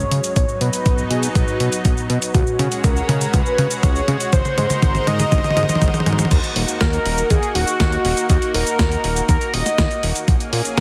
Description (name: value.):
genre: italo disco.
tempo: 121 BPM.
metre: 4/4.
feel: straight.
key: Eb minor.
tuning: A4 = 440 Hz.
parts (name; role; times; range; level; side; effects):
unison lead; melody; 0.0-10.8 s; F#4 to Eb5; -25 LUFS; equal; delay.
lush unison pad; sustained chords; 0.0-10.8 s; Gb3 to C5; -28 LUFS; equal; chorus.
fat analog bass; bass; 0.0-10.8 s; Eb1 to Db3; -24 LUFS; equal; none.
clean 12-bit digital drum machine; drums; 0.1-10.8 s; cabasa, crash cymbal, hi-hat, snare drum, toms; -25 LUFS; equal; studio reverb.
electronic kick drum; drums; 0.4-10.8 s; none; -20 LUFS; equal; studio reverb.
room: light reverb, digital ambience.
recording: heavily compressed radio sound, multiband compression.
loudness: -18 LUFS.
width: mono.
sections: 0.0-6.3 A section; 6.3-10.8 B section.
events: drum fill 0.0-6.3; filter sweep on analog synth lead 0.0-6.3.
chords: 0.4 B; 2.3 Dbsus4; 4.3 Ab7; 6.3 Ebm; 10.3 Bbm7.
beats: | 0.36 0.86 1.35 1.85 | 2.35 2.84 3.34 3.83 | 4.33 4.83 5.32 5.82 | 6.31 6.81 7.30 7.80 | 8.30 8.79 9.29 9.78 | 10.28 10.78.